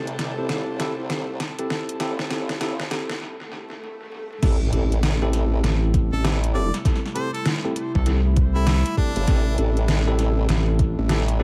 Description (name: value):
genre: glitch hop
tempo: 99 BPM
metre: 4/4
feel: swing 62% on 16ths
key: A minor pentatonic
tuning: A4 = 440 Hz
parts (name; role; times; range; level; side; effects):
- warbly tape-like pad; sustained chords; 0.0-11.4 s; C3 to E4; -36 LUFS; equal; chorus, built-in reverb, sidechain pumping
- bell-like tine electric piano; stabs; 0.0-11.4 s; C4 to A4; -31 LUFS; equal; vintage 12-bit sampler grit, sidechain pumping, tape echo
- formant-sweep wobble bass; bass; 0.0-11.4 s; G1 to C2; -26 LUFS; equal; chorus, tube saturation, high-pass filter
- clear studio string section; texture; 0.0-3.2 s; G4 to A5; -42 LUFS; equal; none
- pop drum kit; drums; 0.1-11.4 s; crash cymbal, hi-hat, snare drum; -31 LUFS; equal; overdrive, tape echo
- swell and impact; sound effects; 3.5-6.9 s; none; -36 LUFS; equal; none
- electronic kick drum; drums; 4.4-10.9 s; none; -23 LUFS; equal; overdrive
- rubbery square bass; bass; 5.6-11.0 s; A1 to C2; -22 LUFS; equal; tube saturation
- bright harmonica; melody; 6.1-9.6 s; D4 to D5; -35 LUFS; equal; tape echo
room: light reverb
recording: echo-heavy mix, vinyl crackle, high-pass filter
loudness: -22 LUFS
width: mono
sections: 0.0-4.4 A section; 4.4-11.4 B section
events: build-up 0.0-4.4; drum fill 0.0-3.2; filter sweep on ambient pad 0.0-4.4; break 3.2-4.4; swell 3.5-4.4; drop 4.4-11.4; impact 4.4-6.9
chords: 0.0 Am7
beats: 0.19 0.79 1.40 | 2.01 2.61 3.22 3.82 | 4.43 5.04 5.64 6.25 | 6.85 7.46 8.07 8.67 | 9.28 9.88 10.49 11.10